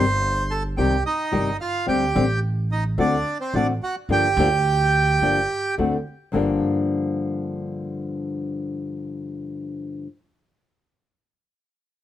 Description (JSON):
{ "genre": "tango", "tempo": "108 BPM", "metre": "4/4", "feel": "rubato", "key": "G minor", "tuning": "A4 = 440 Hz", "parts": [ { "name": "bandoneon", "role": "melody", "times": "0.0-5.8 s", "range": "C4 to C6", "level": "-22 LUFS", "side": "right 4 dB", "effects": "plate reverb" }, { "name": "flamenco guitar", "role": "accompaniment", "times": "0.0-10.1 s", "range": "G2 to G4", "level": "-23 LUFS", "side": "left 4 dB", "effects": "none" }, { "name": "upright bass", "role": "bass", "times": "0.0-6.6 s", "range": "G1 to D2", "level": "-25 LUFS", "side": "right 1 dB", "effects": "none" } ], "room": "moderate studio reverb, RT60 0.6 s", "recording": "none", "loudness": "-20 LUFS", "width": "side -11 dB against mid", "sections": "0.0-6.3 A section; 6.3-8.6 B section", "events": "none", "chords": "0.0 Cm; 1.9 D7sus4; 3.0 D7; 4.1 Gm7; 5.8 D7; 6.3 Gm7" }